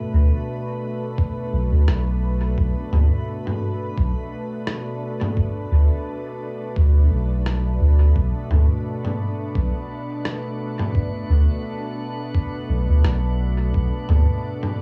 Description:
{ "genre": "ambient dub", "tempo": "86 BPM", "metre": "4/4", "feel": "swing 55% on 16ths", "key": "B minor", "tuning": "A4 = 440 Hz", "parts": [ { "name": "soft additive organ-like pad", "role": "sustained chords", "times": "0.0-14.8 s", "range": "B2 to B4", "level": "-31 LUFS", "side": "equal", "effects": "ensemble chorus, built-in reverb, cassette tape, plate reverb" }, { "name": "round analog bass", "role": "bass", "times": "0.1-14.3 s", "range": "B1 to D2", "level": "-19 LUFS", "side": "equal", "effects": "none" }, { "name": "electronic kick drum", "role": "drums", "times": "1.2-13.9 s", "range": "none", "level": "-25 LUFS", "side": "equal", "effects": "cassette tape" }, { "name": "lo-fi sampler-style drum kit", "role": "drums", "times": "1.9-14.8 s", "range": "rim click, toms", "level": "-29 LUFS", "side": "equal", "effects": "cassette tape, dub echo" }, { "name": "drifting glass-harmonics texture", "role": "texture", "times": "8.7-14.8 s", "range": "B3 to B4", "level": "-38 LUFS", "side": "equal", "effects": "chorus, built-in reverb, cassette tape" } ], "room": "light reverb", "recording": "home recording on cassette, small room ambience", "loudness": "-22 LUFS", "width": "mono", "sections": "0.0-14.8 A section", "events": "none", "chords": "0.0 Bm7" }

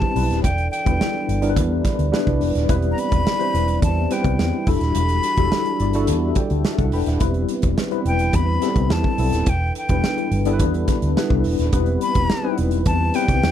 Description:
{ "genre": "polished 1980s jazz-funk pop", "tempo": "106 BPM", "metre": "4/4", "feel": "straight", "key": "unclear", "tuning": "A4 = 440 Hz", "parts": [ { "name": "breathy silver concert flute", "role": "melody", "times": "0.0-13.5 s", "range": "G5 to B5", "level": "-24 LUFS", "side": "left 2 dB", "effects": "slapback echo" }, { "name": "tine electric piano", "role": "accompaniment", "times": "0.0-13.5 s", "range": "G3 to B5", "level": "-23 LUFS", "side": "left 3 dB", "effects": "medium stereo tremolo, analog chorus" }, { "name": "mellow French horn section", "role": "sustained chords", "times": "0.0-13.5 s", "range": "C3 to D5", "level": "-31 LUFS", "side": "right 3 dB", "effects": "stereo widening" }, { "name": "modern studio drum kit", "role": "drums", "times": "0.0-13.5 s", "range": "hi-hat, kick drum, snare drum", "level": "-23 LUFS", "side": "right 1 dB", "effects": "none" }, { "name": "vintage muted fingered electric bass", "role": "bass", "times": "0.2-13.5 s", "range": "D#1 to E2", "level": "-21 LUFS", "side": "right 1 dB", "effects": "none" } ], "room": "little or no reverb", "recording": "none", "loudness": "-17 LUFS", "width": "side -10 dB against mid", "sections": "0.0-13.5 A section", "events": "tine electric piano fill 5.5-7.2", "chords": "0.4 G6/E; 2.7 Cmaj7/E; 4.7 Em11; 7.2 Cmaj7/E" }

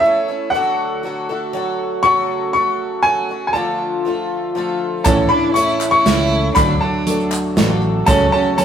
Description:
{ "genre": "indie folk with a building arrangement", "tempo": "119 BPM", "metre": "3/4", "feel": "straight", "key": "unclear", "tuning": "A4 = 443 Hz", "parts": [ { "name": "bright upright piano", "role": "melody", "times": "0.0-8.6 s", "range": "E5 to C#6", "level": "-17 LUFS", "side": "left 1 dB", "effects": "none" }, { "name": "picked twelve-string acoustic guitar", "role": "accompaniment", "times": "0.0-8.6 s", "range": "A2 to A4", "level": "-22 LUFS", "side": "left 4 dB", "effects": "none" }, { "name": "warm brass ensemble", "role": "sustained chords", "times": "0.0-8.6 s", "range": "C#3 to C#5", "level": "-26 LUFS", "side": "right 4 dB", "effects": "none" }, { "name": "clear violin", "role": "second line", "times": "5.0-8.6 s", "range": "C#4 to E4", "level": "-20 LUFS", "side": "right 3 dB", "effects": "none" }, { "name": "felt-muted upright piano", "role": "accompaniment", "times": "5.1-8.6 s", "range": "A1 to E5", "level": "-21 LUFS", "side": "right 1 dB", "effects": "none" }, { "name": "fingered electric bass", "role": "bass", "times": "5.1-8.3 s", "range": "A1 to D2", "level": "-20 LUFS", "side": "right 1 dB", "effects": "none" }, { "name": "natural country drum kit", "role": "drums", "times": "5.1-8.6 s", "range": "hi-hat, kick drum, snare drum", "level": "-19 LUFS", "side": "right 1 dB", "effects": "none" }, { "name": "group handclap", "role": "percussion", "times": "5.1-8.3 s", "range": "none", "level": "-29 LUFS", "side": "left 2 dB", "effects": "none" }, { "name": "tube shaker", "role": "percussion", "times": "5.1-8.2 s", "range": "none", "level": "-34 LUFS", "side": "right 4 dB", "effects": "none" } ], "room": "moderate stone room reverb, RT60 1.0 s", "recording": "rough rehearsal-room recording", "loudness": "-15 LUFS", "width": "side -8 dB against mid", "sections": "0.0-8.6 A section", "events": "none", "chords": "0.0 A; 0.5 D; 2.0 F#m/C#; 3.6 Dm; 5.1 A; 6.6 D; 8.1 F#m/C#" }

